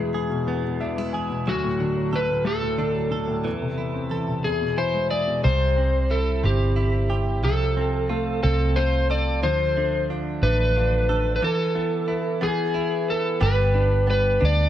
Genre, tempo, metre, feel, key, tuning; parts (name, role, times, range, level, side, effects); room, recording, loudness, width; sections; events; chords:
six-eight pop ballad; 60 BPM (dotted quarters); 6/8; straight; A4 = 445 Hz
electric slide guitar; melody; 0.0-14.7 s; F#4 to D5; -24 LUFS; equal
clear grand piano; accompaniment; 0.0-14.7 s; D2 to G#5; -28 LUFS; left 3 dB
direct-recorded clean electric guitar; arpeggios; 0.0-14.7 s; E3 to A4; -31 LUFS; right 5 dB; lush chorus
vintage muted fingered electric bass; bass; 5.4-14.7 s; G1 to D2; -22 LUFS; equal
light reverb; -20 LUFS; side -11 dB against mid
0.0-5.4 A section; 5.4-13.4 B section; 13.4-14.7 C section
grand piano fill 0.5-1.5, 4.5-5.4; break 11.4-13.4
0.0 E; 1.5 D; 3.5 Am/E; 4.5 E; 5.4 C; 7.4 F/C; 9.4 Dm; 11.4 Esus4; 13.4 G